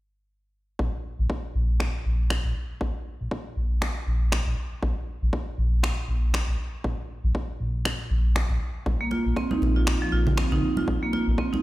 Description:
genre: afro house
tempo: 119 BPM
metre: 4/4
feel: swing 58% on 16ths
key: unclear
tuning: A4 = 440 Hz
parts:
  - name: smooth gliding synth bass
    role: bass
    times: 0.8-11.4 s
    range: Bb1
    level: -24 LUFS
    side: equal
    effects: sidechain pumping
  - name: electronic kick drum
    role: drums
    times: 0.8-11.5 s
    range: none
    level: -31 LUFS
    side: equal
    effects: overdrive, high-pass filter on kick
  - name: electronic finger snaps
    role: drums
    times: 1.8-10.5 s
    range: none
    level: -32 LUFS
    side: left 1 dB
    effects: overdrive
  - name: congas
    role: percussion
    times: 8.9-11.6 s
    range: none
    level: -31 LUFS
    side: right 2 dB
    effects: none
  - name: marimba with hard mallets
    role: arpeggios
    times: 9.0-11.6 s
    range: F3 to F4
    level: -25 LUFS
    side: right 2 dB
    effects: sidechain pumping, tape echo
room: little or no reverb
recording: played on a big sound system in a bare room, large studio reverb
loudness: -24 LUFS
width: side -17 dB against mid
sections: 0.8-11.6 A section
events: none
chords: 0.8 N.C.; 8.9 F5/Bb

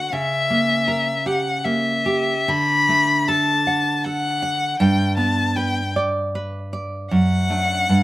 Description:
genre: romantic duo for violin and classical guitar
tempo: 77 BPM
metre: 3/4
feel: uneven beats, rubato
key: D major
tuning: A4 = 440 Hz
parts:
  - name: rich violin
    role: melody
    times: 0.0-8.0 s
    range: E5 to B5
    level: -20 LUFS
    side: left 3 dB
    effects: none
  - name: nylon-string guitar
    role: accompaniment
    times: 0.0-8.0 s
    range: F#2 to F#5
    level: -21 LUFS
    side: right 2 dB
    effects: none
room: light reverb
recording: recorded outdoors, with no room sound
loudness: -17 LUFS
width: side -16 dB against mid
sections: 0.0-8.0 A section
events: none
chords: 0.1 C#dim7; 2.5 D; 4.8 G; 7.1 D/F#

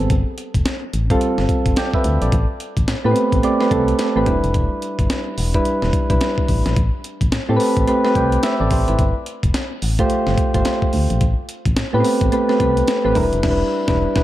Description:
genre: R&B, new jack swing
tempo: 108 BPM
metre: 4/4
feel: swing 61% on 16ths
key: A minor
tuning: A4 = 440 Hz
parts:
  - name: soft electric-piano-like synth keys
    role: accompaniment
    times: 0.0-14.2 s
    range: G3 to G5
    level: -18 LUFS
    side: right 1 dB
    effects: chorus
  - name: solid FM bass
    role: bass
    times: 0.0-14.2 s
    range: E1 to A2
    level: -20 LUFS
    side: equal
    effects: none
  - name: breakbeat sampler-style drum kit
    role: drums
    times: 0.1-14.2 s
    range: crash cymbal, hi-hat, kick drum, snare drum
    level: -21 LUFS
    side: equal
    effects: none
room: moderate plate reverb, RT60 2.5 s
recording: dark, warm production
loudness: -16 LUFS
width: side -14 dB against mid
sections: 0.0-14.2 A section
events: band accent 13.4-14.2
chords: 0.1 G9sus4; 2.3 Am9; 4.3 Em7; 6.8 Am9; 9.0 G9sus4; 11.2 Am9; 13.2 Em7

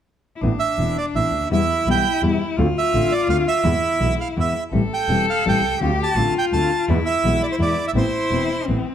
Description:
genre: tango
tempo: 168 BPM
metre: 3/4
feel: rubato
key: A minor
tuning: A4 = 440 Hz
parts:
  - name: warm cello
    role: second line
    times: 0.4-8.9 s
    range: C4 to A4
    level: -24 LUFS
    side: left 5 dB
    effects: none
  - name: nylon-string guitar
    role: accompaniment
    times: 0.4-8.9 s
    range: B2 to F4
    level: -24 LUFS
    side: left 3 dB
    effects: none
  - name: clear double bass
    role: bass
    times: 0.4-8.8 s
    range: E1 to E2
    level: -24 LUFS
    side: right 2 dB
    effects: none
  - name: bandoneon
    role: melody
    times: 0.6-8.7 s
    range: C5 to A5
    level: -22 LUFS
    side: right 5 dB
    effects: none
room: light reverb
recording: close, detailed microphones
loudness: -17 LUFS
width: side -9 dB against mid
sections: 0.4-8.9 A section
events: none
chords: 0.4 Amadd9; 1.5 Em; 2.6 Dm7; 3.6 E; 4.7 Am7; 5.8 Dm7; 6.9 E; 7.9 Amadd9

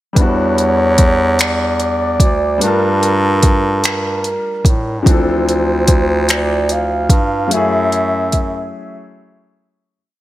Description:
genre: slow six-eight R&B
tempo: 49 BPM (dotted quarters)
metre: 6/8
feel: straight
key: unclear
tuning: A4 = 440 Hz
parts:
  - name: clear concert grand piano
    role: accompaniment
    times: 0.1-10.0 s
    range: E3 to A5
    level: -20 LUFS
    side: left 2 dB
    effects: none
  - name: breathy flugelhorn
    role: melody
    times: 0.2-9.2 s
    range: A4 to F5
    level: -19 LUFS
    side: right 1 dB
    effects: none
  - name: bright bass clarinet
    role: bass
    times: 0.2-8.7 s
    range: D2 to A2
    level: -17 LUFS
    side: equal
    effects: none
  - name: smooth R&B drum kit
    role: drums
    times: 0.2-8.5 s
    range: finger snaps, hi-hat, kick drum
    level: -14 LUFS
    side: equal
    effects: overdrive
room: moderate plate reverb, RT60 2.7 s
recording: dreamy mix soaked in reverb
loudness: -12 LUFS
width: side -15 dB against mid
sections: 0.2-10.0 verse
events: fade-out 7.5-10.0; break 8.7-10.0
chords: 0.2 Em9; 2.6 Gm9; 5.1 Dm9; 7.5 F#m9

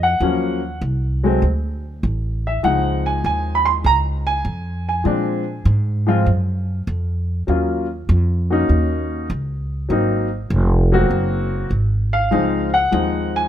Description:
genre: jazz piano trio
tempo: 99 BPM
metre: 4/4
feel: swing 68% on 8ths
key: unclear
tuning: A4 = 439 Hz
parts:
  - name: warm baby grand piano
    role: melody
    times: 0.0-13.5 s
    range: F3 to C6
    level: -18 LUFS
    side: left 1 dB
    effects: plate reverb
  - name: upright bass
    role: bass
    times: 0.0-13.5 s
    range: F1 to Bb2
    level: -20 LUFS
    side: equal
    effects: none
room: light reverb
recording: close, detailed microphones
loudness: -17 LUFS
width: side -10 dB against mid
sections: 0.0-13.5 A section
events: none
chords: 0.2 Ebm7; 1.4 D5; 2.6 Dbmaj7; 5.1 Bb7(no3); 7.5 Ebm7; 9.9 Ab7; 12.3 Dbmaj7

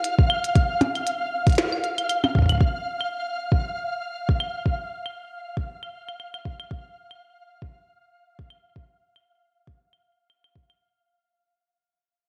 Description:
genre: IDM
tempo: 117 BPM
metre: 4/4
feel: swing 56% on 16ths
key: unclear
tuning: A4 = 440 Hz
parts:
  - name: glitchy drum kit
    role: drums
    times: 0.0-10.8 s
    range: claves, hi-hat, percussion blips, snare drum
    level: -29 LUFS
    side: equal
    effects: cassette tape
  - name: flickering grainy texture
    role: texture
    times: 0.0-10.8 s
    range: F5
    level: -31 LUFS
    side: equal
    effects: built-in reverb, cassette tape
  - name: electronic kick drum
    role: drums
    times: 0.2-10.7 s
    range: none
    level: -22 LUFS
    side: equal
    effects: cassette tape
room: moderate lush hall reverb, RT60 1.9 s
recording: home recording on cassette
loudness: -24 LUFS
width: mono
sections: 0.0-10.8 A section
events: fade-out 0.0-10.8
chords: none

